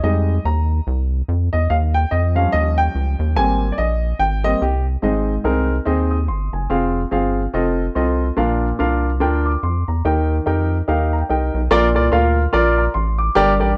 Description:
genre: uptempo gospel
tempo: 144 BPM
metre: 4/4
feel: swing 59% on 8ths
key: Ab major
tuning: A4 = 440 Hz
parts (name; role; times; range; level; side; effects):
- warm grand piano; accompaniment; 0.0-13.8 s; G2 to Eb6; -21 LUFS; equal; none
- rubbery square bass; bass; 0.0-13.7 s; F1 to F2; -22 LUFS; equal; none
room: light reverb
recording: dark, warm production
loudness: -18 LUFS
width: mono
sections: 0.0-5.0 A section; 5.0-11.7 B section; 11.7-13.8 C section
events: grand piano solo 0.0-5.0; grand piano fill 10.9-11.7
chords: 0.0 Fm7; 1.7 Eb7; 3.4 Abmaj7; 5.0 Ab; 6.7 Fm; 7.5 F7; 8.4 Bb; 10.0 Eb; 11.7 Bb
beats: | 0.04 0.45 0.87 1.28 | 1.70 2.11 2.53 2.94 | 3.36 3.78 4.19 4.61 | 5.03 5.45 5.86 6.28 | 6.70 7.12 7.54 7.96 | 8.37 8.79 9.21 9.63 | 10.05 10.46 10.88 11.29 | 11.71 12.12 12.53 12.94 | 13.36 13.77

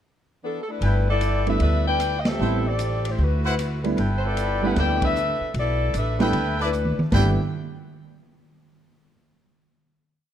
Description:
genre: jazz, big band swing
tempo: 152 BPM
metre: 4/4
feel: swing 65% on 8ths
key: G major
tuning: A4 = 440 Hz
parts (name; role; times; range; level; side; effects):
- mellow saxophone section; melody; 0.4-7.4 s; E3 to G5; -26 LUFS; left 3 dB; none
- clear trumpet section; stabs; 0.8-7.3 s; E4 to G5; -30 LUFS; right 1 dB; none
- upright bass; bass; 0.8-7.4 s; G1 to D2; -23 LUFS; equal; none
- swinging big-band drum kit; drums; 0.8-7.2 s; crash cymbal, hi-hat, kick drum, ride cymbal, rim click, snare drum, toms; -29 LUFS; right 1 dB; none
- warm concert grand piano; accompaniment; 1.5-7.4 s; G3 to E4; -26 LUFS; right 4 dB; none
room: light reverb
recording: dark, warm production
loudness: -20 LUFS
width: side -10 dB against mid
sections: 0.0-0.8 pickup bar; 0.8-7.1 A section; 7.1-8.7 final chord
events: band accent 2.2, 5.0; drum fill 6.7-7.1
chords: 0.0 E7sus4; 0.8 G69; 2.4 Am7; 3.2 D69; 4.0 G69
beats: 0.03 0.42 | 0.82 1.21 1.61 2.00 | 2.40 2.79 3.19 3.58 | 3.98 4.37 4.76 5.16 | 5.55 5.94 6.34 6.73 | 7.12

